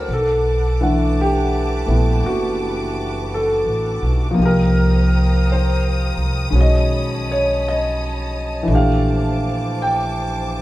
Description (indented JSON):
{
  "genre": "jazz ballad",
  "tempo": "56 BPM",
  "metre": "4/4",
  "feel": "swing 67% on 8ths",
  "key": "unclear",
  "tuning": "A4 = 441 Hz",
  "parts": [
    { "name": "warm concert grand piano", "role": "accompaniment", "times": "0.0-10.6 s", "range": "D#3 to G5", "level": "-19 LUFS", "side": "equal", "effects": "none" },
    { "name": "warm symphonic string section", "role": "sustained chords", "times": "0.0-10.6 s", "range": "B4 to Eb6", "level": "-29 LUFS", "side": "right 1 dB", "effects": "none" },
    { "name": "upright bass", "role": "bass", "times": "0.0-10.6 s", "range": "F#1 to C2", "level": "-19 LUFS", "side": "equal", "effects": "none" }
  ],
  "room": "moderate large studio reverb, RT60 0.9 s",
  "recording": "band playing live in one room",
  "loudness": "-16 LUFS",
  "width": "side -16 dB against mid",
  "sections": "0.0-10.6 A section",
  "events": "none",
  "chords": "0.1 Bm7; 4.4 Cm7; 6.5 B9; 8.7 Bbmaj9"
}